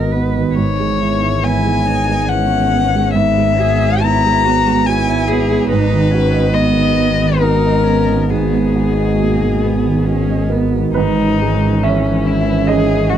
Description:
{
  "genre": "neoclassical piano and strings",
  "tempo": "69 BPM",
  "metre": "3/4",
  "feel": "rubato",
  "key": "unclear",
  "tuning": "A4 = 440 Hz",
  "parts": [
    { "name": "warm cello", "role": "second line", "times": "0.0-13.2 s", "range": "E3 to B4", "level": "-23 LUFS", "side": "right 4 dB", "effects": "none" },
    { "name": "warm concert grand piano", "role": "accompaniment", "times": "0.0-13.2 s", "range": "G#2 to E5", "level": "-17 LUFS", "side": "right 5 dB", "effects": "none" },
    { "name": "warbly tape-like pad", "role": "sustained chords", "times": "0.0-13.2 s", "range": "E3 to D#5", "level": "-25 LUFS", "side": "left 1 dB", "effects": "chorus, built-in reverb" },
    { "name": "rich double bass", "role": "bass", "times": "0.0-13.2 s", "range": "G#1", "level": "-18 LUFS", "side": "left 1 dB", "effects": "none" },
    { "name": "rich violin", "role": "melody", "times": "0.6-13.2 s", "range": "C#4 to A#5", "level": "-18 LUFS", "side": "left 7 dB", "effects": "none" }
  ],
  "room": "light reverb",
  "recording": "dry, close 1970s-style studio recording",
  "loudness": "-12 LUFS",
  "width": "side -10 dB against mid",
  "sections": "0.0-10.9 A section; 10.9-13.2 A section",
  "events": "none",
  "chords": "0.0 G#m7; 0.6 C#m7/G#; 3.1 Eadd9/G#; 5.7 G#m7; 10.9 C#m7/G#"
}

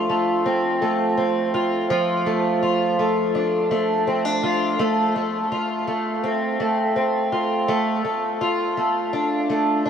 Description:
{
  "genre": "dream pop",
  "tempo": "83 BPM",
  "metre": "4/4",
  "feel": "straight",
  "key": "unclear",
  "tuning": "A4 = 439 Hz",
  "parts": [
    { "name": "fingerpicked twelve-string acoustic guitar", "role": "solo", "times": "0.0-9.9 s", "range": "F3 to F4", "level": "-19 LUFS", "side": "equal", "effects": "lush chorus, digital delay" }
  ],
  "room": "wet huge ambient reverb, RT60 7.6 s",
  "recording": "none",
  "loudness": "-19 LUFS",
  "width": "side -8 dB against mid",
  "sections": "0.0-9.9 A section",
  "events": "none",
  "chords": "0.0 F; 7.7 Dm/A"
}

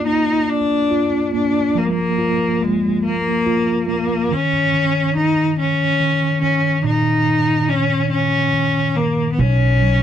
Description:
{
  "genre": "acoustic folk-pop ballad",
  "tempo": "47 BPM (dotted quarters)",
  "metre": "6/8",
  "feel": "straight",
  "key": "unclear",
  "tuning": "A4 = 440 Hz",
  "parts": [
    { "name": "rich cello", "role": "melody", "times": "0.0-10.0 s", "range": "Ab3 to Eb4", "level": "-18 LUFS", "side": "left 2 dB", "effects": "none" },
    { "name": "mellow tine electric piano", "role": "accompaniment", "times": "0.0-10.0 s", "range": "Bb2 to F4", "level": "-19 LUFS", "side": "right 2 dB", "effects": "fast stereo tremolo" },
    { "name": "upright bass", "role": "bass", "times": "9.4-10.0 s", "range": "B1", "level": "-17 LUFS", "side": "equal", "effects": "none" }
  ],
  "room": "light reverb",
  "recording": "dry, close 1970s-style studio recording",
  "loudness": "-15 LUFS",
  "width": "side -10 dB against mid",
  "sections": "0.0-10.0 A section",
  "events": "none",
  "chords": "0.0 Bb; 4.3 Eb5; 9.4 B5"
}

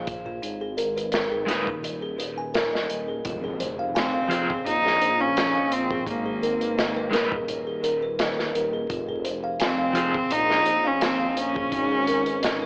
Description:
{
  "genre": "trip hop",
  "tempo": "85 BPM",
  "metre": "4/4",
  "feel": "swing 54% on 16ths",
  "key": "F minor",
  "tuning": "A4 = 439 Hz",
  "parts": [
    { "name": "music box", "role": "arpeggios", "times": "0.0-12.7 s", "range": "Eb4 to Ab5", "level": "-28 LUFS", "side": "equal", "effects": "digital delay" },
    { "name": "dark detuned saw bass", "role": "bass", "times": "0.0-12.7 s", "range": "Eb1 to Bb1", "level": "-33 LUFS", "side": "equal", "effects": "tube saturation" },
    { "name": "crunchy breakbeat drum kit", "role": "drums", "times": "0.1-12.6 s", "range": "hi-hat, kick drum, snare drum", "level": "-29 LUFS", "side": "equal", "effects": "none" },
    { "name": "electric guitar at the edge of break-up", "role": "accompaniment", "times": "1.5-10.2 s", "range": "F3 to C5", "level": "-29 LUFS", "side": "equal", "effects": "tremolo, tape echo" },
    { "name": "impact", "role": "sound effects", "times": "3.2-6.1 s", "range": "none", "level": "-40 LUFS", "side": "equal", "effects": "none" },
    { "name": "rich cello", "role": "melody", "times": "4.0-12.7 s", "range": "Bb3 to Eb4", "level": "-23 LUFS", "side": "equal", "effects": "tape echo" }
  ],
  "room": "light reverb, studio reverb",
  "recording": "vinyl crackle, AM radio sound",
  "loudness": "-22 LUFS",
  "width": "side -34 dB against mid",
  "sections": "0.0-3.2 A section; 3.2-12.7 B section",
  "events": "impact 3.2-6.1",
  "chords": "0.4 Abmadd9; 3.2 Fm; 6.1 Abmadd9; 8.9 Fm; 11.7 Abmadd9"
}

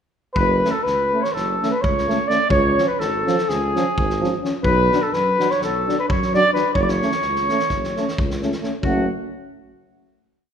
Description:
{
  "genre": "balkan folk, Balkan brass band",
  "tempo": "256 BPM (eighths)",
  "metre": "9/8",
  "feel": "straight",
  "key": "F# harmonic minor",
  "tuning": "A4 = 441 Hz",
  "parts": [
    { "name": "mellow trumpet", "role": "melody", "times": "0.3-9.1 s", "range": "G#4 to F#5", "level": "-20 LUFS", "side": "equal", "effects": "none" },
    { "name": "warm clarinet", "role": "second line", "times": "0.4-9.1 s", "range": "F#4 to D5", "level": "-27 LUFS", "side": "left 2 dB", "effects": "none" },
    { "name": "mellow tuba", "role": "bass", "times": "0.4-9.1 s", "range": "F#1 to F#2", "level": "-25 LUFS", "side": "equal", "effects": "none" },
    { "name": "loose indie drum kit", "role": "percussion", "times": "0.4-9.1 s", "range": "kick drum, snare drum", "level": "-27 LUFS", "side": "equal", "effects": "none" },
    { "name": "warm French horn", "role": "accompaniment", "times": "0.6-9.1 s", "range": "C#4 to D4", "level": "-28 LUFS", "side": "left 4 dB", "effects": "none" },
    { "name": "warm euphonium", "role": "accompaniment", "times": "0.6-9.1 s", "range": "E#3 to A3", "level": "-28 LUFS", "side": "right 5 dB", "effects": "none" }
  ],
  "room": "moderate scoring stage reverb, RT60 1.6 s",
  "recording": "minimal, uncompressed stereo recording",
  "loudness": "-17 LUFS",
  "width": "side -8 dB against mid",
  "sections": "0.4-8.8 A section; 8.8-10.5 final chord",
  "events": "none",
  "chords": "0.4 F#m; 2.5 C#; 4.6 Bm; 6.7 F#m"
}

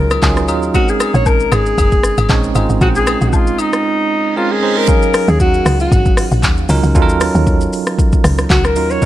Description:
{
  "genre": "amapiano",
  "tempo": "116 BPM",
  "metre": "4/4",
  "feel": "swing 55% on 16ths",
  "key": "unclear",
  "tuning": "A4 = 439 Hz",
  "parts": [
    { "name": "breathy alto saxophone", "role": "melody", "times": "0.0-9.1 s", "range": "Eb4 to Db5", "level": "-17 LUFS", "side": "left 2 dB", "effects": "digital delay" },
    { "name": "bell-like tine electric piano", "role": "accompaniment", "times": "0.0-9.1 s", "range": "Gb3 to G5", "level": "-18 LUFS", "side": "right 5 dB", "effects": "fast stereo tremolo" },
    { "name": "woody log drum bass", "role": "bass", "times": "0.0-9.0 s", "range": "Gb1 to Eb2", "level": "-15 LUFS", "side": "equal", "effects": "none" },
    { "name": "deep house drum kit", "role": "drums", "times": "0.1-9.1 s", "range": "handclaps, hi-hat, kick drum, rim click, shaker", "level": "-15 LUFS", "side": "equal", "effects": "vintage 12-bit sampler grit" },
    { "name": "agogo bells and woodblock", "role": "percussion", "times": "0.1-3.7 s", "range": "none", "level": "-24 LUFS", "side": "left 9 dB", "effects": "none" },
    { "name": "reverse cymbal", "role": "sound effects", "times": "4.2-4.9 s", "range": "none", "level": "-23 LUFS", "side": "right 7 dB", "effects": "none" }
  ],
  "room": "digital ambience",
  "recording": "none",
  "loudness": "-11 LUFS",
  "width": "side -14 dB against mid",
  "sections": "0.0-4.9 A section; 4.9-9.1 B section",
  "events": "reverse cymbal 4.2-4.9; drop 4.9-9.1",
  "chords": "0.0 Ebm11; 0.7 Bbm11; 4.9 Ebm11"
}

